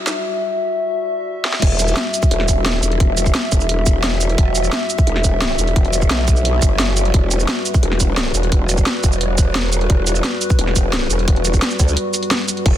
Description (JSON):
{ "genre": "dark technical drum and bass", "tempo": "174 BPM", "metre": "4/4", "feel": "straight", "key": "E minor", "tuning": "A4 = 438 Hz", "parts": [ { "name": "dark analog pad", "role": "sustained chords", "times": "0.0-12.8 s", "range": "G3 to F#5", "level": "-22 LUFS", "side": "left 2 dB", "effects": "wide subtle chorus, sidechain pumping" }, { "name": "drum and bass drum kit", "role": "drums", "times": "0.1-12.7 s", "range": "crash cymbal, hi-hat, shaker, snare drum", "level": "-20 LUFS", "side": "equal", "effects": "none" }, { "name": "growl bass", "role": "bass", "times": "1.6-12.8 s", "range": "E1 to D2", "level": "-18 LUFS", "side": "equal", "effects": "chorus, tube saturation" }, { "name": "electronic kick drum", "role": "drums", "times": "1.6-12.7 s", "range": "none", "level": "-15 LUFS", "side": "equal", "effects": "high-pass filter on kick" } ], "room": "digital ambience", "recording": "dense, heavily limited modern master, high-pass filter", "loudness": "-14 LUFS", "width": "side -12 dB against mid", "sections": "0.0-1.6 A section; 1.6-12.8 B section", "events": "build-up 0.0-1.6; drum fill 0.0, 1.4; filter sweep on analog synth pad 0.0-1.6; drop 1.6-12.8; break 12.0-12.7", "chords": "0.0 Emadd9" }